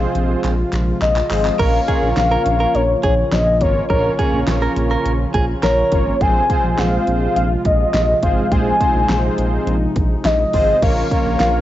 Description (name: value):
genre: synth-pop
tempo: 104 BPM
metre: 4/4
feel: straight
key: Bb minor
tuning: A4 = 440 Hz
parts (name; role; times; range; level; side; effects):
- warm velvety synth lead; melody; 0.0-11.6 s; Db5 to Ab5; -18 LUFS; left 2 dB; chorus, cassette tape
- analog synth brass; accompaniment; 0.0-11.6 s; Ab3 to Db5; -23 LUFS; right 1 dB; chorus, cassette tape
- brassy analog pad; sustained chords; 0.0-11.6 s; C3 to F4; -24 LUFS; equal; chorus, cassette tape
- smooth synth bass; bass; 0.0-11.6 s; Ab1 to Bb1; -20 LUFS; equal; none
- pop drum kit; drums; 0.1-11.5 s; crash cymbal, handclaps, hi-hat, kick drum, snare drum; -21 LUFS; equal; cassette tape
- direct-recorded clean electric guitar; second line; 1.6-6.0 s; Ab4 to Bb4; -23 LUFS; right 4 dB; warbly pitch drift, cassette tape, tape echo
room: light reverb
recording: home recording on cassette, nothing above 7.7 kHz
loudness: -14 LUFS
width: side -13 dB against mid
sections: 0.0-10.8 A section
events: drum fill 0.4-1.6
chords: 0.0 Fm; 1.6 Bbm; 6.2 Fm; 10.8 Bbm